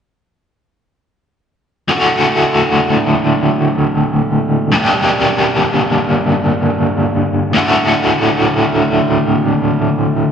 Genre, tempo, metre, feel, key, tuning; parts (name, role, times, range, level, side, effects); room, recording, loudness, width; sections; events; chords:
rock; free time; D major; A4 = 440 Hz
biting overdriven guitar; solo; 1.9-10.3 s; D2 to G4; -12 LUFS; equal; tremolo
wet large studio reverb, RT60 1.4 s; band playing live in one room, nothing above 10.4 kHz; -12 LUFS; side -7 dB against mid
1.9-10.3 A section
1.9 D; 4.7 Gm; 7.6 D